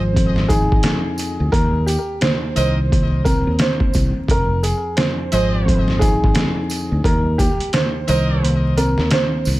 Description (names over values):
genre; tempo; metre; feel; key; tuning
hip hop, boom-bap hip-hop; 87 BPM; 4/4; swing 61% on 16ths; F minor; A4 = 443 Hz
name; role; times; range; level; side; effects
warm upright piano; melody; 0.0-9.4 s; G4 to C5; -23 LUFS; right 2 dB; high-pass filter, low-pass filter, ping-pong delay
tine electric piano; accompaniment; 0.0-9.6 s; Eb2 to Eb4; -22 LUFS; left 1 dB; cassette tape, high-pass filter, low-pass filter
clear trumpet section; stabs; 0.0-8.6 s; C4 to Eb5; -30 LUFS; left 1 dB; high-pass filter, low-pass filter, ping-pong delay
fingered electric bass; bass; 0.0-9.6 s; F1 to Eb2; -19 LUFS; equal; none
trip hop sampler-style drum kit; drums; 0.2-9.6 s; hi-hat, kick drum, snare drum; -19 LUFS; equal; overdrive, vintage 12-bit sampler grit
tambourine; percussion; 0.5-9.6 s; none; -35 LUFS; right 3 dB; none
room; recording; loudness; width
studio ambience; vinyl crackle; -15 LUFS; side -17 dB against mid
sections
0.0-9.6 A section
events
kick muted 8.4-9.6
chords
0.0 Fm7; 1.5 Cm7; 4.3 Fm7; 7.0 Cm7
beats
0.15 0.84 | 1.53 2.22 2.91 3.60 | 4.29 4.98 5.67 6.36 | 7.05 7.74 8.43 9.12